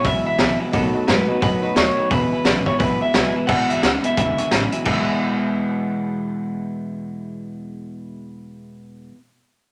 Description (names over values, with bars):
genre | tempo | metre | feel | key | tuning
rockabilly | 174 BPM | 4/4 | swing 61% on 8ths | E major | A4 = 439 Hz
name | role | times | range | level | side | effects
electric guitar through a small old amp | melody | 0.0-4.5 s | A4 to F#5 | -25 LUFS | equal | none
honky-tonk upright piano | accompaniment | 0.0-9.1 s | D#5 to C#6 | -33 LUFS | equal | none
picked steel-string acoustic guitar | accompaniment | 0.0-9.2 s | E2 to F#4 | -31 LUFS | equal | none
electric guitar through a small old amp | riff | 0.0-9.1 s | E2 to G#4 | -27 LUFS | equal | spring reverb
upright bass | bass | 0.0-9.1 s | E1 to F#2 | -32 LUFS | equal | none
raw garage drum kit | drums | 0.0-5.0 s | crash cymbal, hi-hat, kick drum, snare drum | -24 LUFS | equal | none
room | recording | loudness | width
moderate club reverb, RT60 0.8 s | none | -20 LUFS | mono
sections
0.0-3.5 A section; 3.5-4.9 B section; 4.9-7.6 C section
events
none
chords
0.0 E; 0.7 B7; 2.1 E